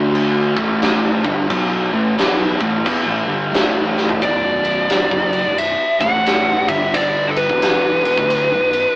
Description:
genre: stoner and doom metal.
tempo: 88 BPM.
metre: 4/4.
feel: swing 62% on 8ths.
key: B minor.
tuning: A4 = 440 Hz.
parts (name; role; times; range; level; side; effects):
thick fuzz guitar; riff; 0.0-8.8 s; B1 to D4; -25 LUFS; left 1 dB; distortion.
thick fuzz guitar; riff; 0.0-8.8 s; B1 to D4; -22 LUFS; equal; distortion.
fuzz fingered electric bass; bass; 0.0-8.8 s; B0 to E2; -25 LUFS; equal; overdrive.
big rock drum kit; drums; 0.1-8.8 s; crash cymbal, kick drum, ride cymbal, snare drum, toms; -19 LUFS; equal; none.
fuzz lead guitar; melody; 4.2-9.0 s; A4 to F#5; -16 LUFS; equal; distortion.
room: light reverb.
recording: rough rehearsal-room recording, warm saturation, AM radio sound.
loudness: -14 LUFS.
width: side -23 dB against mid.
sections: 0.0-4.2 A section; 4.2-9.0 B section.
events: drum fill 3.9-4.2.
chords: 0.5 A5; 4.2 Bm; 5.9 A5; 6.6 G5; 7.5 E5; 8.1 Bm.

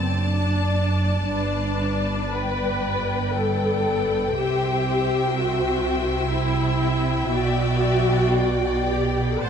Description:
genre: classical, slow romantic movement for string orchestra.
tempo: 53-62 BPM.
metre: 3/4.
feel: rubato.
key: unclear.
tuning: A4 = 440 Hz.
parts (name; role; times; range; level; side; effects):
rich symphonic violin section; melody; 0.0-9.5 s; G5 to A5; -30 LUFS; left 4 dB; none.
clear symphonic violin section; second line; 0.0-9.5 s; B4 to F#5; -30 LUFS; left 4 dB; none.
warm symphonic viola section; accompaniment; 0.0-9.5 s; C4 to C5; -24 LUFS; left 1 dB; none.
rich symphonic cello section; bass; 0.0-9.5 s; F#2 to C3; -26 LUFS; right 2 dB; none.
rich symphonic double bass section; bass; 0.0-9.5 s; F#1 to C2; -27 LUFS; right 2 dB; none.
room: moderate scoring stage reverb, RT60 2.1 s.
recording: dark, warm production.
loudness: -20 LUFS.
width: side -7 dB against mid.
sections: 0.0-9.5 A section.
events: none.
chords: 0.0 D/F#; 1.3 G; 4.4 C; 7.3 G/B.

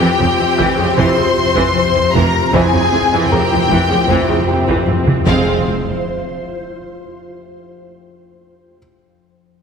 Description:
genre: cinematic, suspense film score.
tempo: 77 BPM.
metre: 4/4.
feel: straight.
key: unclear.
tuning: A4 = 441 Hz.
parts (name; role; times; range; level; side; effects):
warm symphonic violin section; melody; 0.0-5.7 s; F5 to C6; -19 LUFS; left 4 dB; none.
warm symphonic violin section; second line; 0.0-5.7 s; F4 to C5; -20 LUFS; left 4 dB; none.
rich symphonic viola section; accompaniment; 0.0-5.7 s; Db3 to C4; -19 LUFS; right 2 dB; none.
ethereal airy pad; sustained chords; 0.0-5.7 s; E4 to E5; -26 LUFS; right 2 dB; ensemble chorus, built-in reverb, phaser.
concert harp; riff; 0.0-5.3 s; F2 to F3; -22 LUFS; left 6 dB; none.
rich symphonic cello section; bass; 0.0-5.7 s; F2; -22 LUFS; right 4 dB; none.
timpani; percussion; 0.0-5.6 s; F2; -23 LUFS; equal; none.
warm symphonic double bass section; bass; 0.2-5.7 s; F1; -22 LUFS; right 5 dB; none.
solo taiko drums; drums; 0.2-6.8 s; none; -23 LUFS; right 1 dB; none.
dark concert grand piano; texture; 0.6-5.7 s; G4 to G6; -26 LUFS; left 1 dB; none.
mellow trombone section; sustained chords; 1.0-5.6 s; C3 to E4; -27 LUFS; right 6 dB; none.
warm French horn section; sustained chords; 1.0-5.6 s; C4 to C5; -25 LUFS; left 1 dB; none.
impact; sound effects; 5.3-8.4 s; none; -25 LUFS; right 1 dB; none.
room: wet scoring stage reverb, RT60 2.1 s.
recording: heavily compressed radio sound, multiband compression.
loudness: -12 LUFS.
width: side -6 dB against mid.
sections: 0.0-5.6 A section; 5.6-8.8 B section.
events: timpani fill 0.0-5.6; drum fill 4.9-5.6; impact 5.6-8.8.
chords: 0.0 C/F; 5.3 Fm; 5.6 N.C..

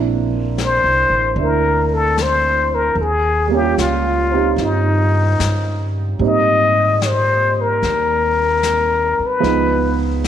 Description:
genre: jazz ballad.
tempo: 75 BPM.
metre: 4/4.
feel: swing 68% on 8ths.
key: unclear.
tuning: A4 = 442 Hz.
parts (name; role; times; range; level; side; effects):
warm upright piano; accompaniment; 0.0-10.3 s; Bb2 to G4; -21 LUFS; right 10 dB; none.
upright bass; bass; 0.0-10.3 s; A1 to Ab2; -20 LUFS; equal; none.
trumpet with plunger mute; melody; 0.6-10.0 s; Eb4 to Eb5; -16 LUFS; left 3 dB; none.
vintage brush drum kit; drums; 0.6-10.3 s; brushed snare drum, hi-hat, snare drum; -29 LUFS; left 7 dB; none.
room: moderate echo chamber reverb, RT60 2.1 s.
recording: 1960s-style stereo with parts hard left and right.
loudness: -14 LUFS.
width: side -9 dB against mid.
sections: 0.0-10.3 A section.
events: none.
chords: 0.0 Bbadd9(#11); 3.0 Eb7; 6.2 Abmaj9; 9.4 Db9.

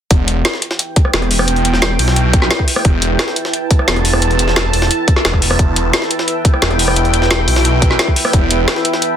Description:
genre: dark technical drum and bass.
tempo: 175 BPM.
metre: 4/4.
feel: straight.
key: E minor.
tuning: A4 = 440 Hz.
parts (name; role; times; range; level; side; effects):
deep dark ambient pad; sustained chords; 0.8-9.2 s; E4 to A5; -18 LUFS; right 1 dB; chorus, built-in reverb, sidechain pumping.
phased detuned saw bass; bass; 0.1-8.7 s; E1 to B1; -15 LUFS; equal; phaser, tube saturation, sidechain pumping.
drum and bass drum kit; drums; 0.1-9.1 s; hi-hat, rim click, snare drum; -16 LUFS; left 1 dB; none.
electronic kick drum; drums; 0.1-8.4 s; none; -12 LUFS; equal; none.
jungle sampler-style drum kit; drums; 0.1-9.1 s; hi-hat, snare drum; -22 LUFS; equal; high-pass filter on hats, high-pass filter on snare.
room: light reverb.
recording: dense, heavily limited modern master.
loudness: -11 LUFS.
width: side -9 dB against mid.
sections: 0.1-9.2 A section.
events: drop 0.1-9.2.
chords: 0.1 Em.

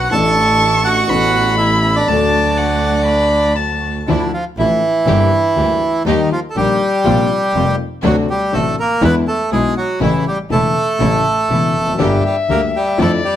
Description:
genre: tango.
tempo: 121 BPM.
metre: 4/4.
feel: rubato.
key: D major, D minor from 4.1 s.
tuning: A4 = 440 Hz.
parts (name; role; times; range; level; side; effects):
bandoneon; melody; 0.0-13.4 s; D3 to A5; -16 LUFS; right 2 dB; none.
dark violin; second line; 0.0-4.1, 12.0-13.4 s; D5 to C#6; -19 LUFS; left 4 dB; none.
dark baby grand piano; accompaniment; 0.0-13.2 s; E1 to A4; -19 LUFS; left 4 dB; none.
rich studio string section; stabs; 0.0-13.2 s; F3 to A4; -26 LUFS; right 2 dB; none.
clear double bass; bass; 0.0-13.2 s; E1 to F2; -20 LUFS; right 2 dB; none.
room: light reverb.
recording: none.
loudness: -13 LUFS.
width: side -11 dB against mid.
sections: 0.0-4.1 A section; 4.1-13.4 B section.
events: none.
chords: 0.1 Asus4; 1.1 Aadd9; 2.1 D; 4.1 Dmadd9; 5.1 Gm; 6.1 Eb; 7.0 Bbsus2; 8.0 D7; 9.0 E7; 10.0 A; 12.0 Gm.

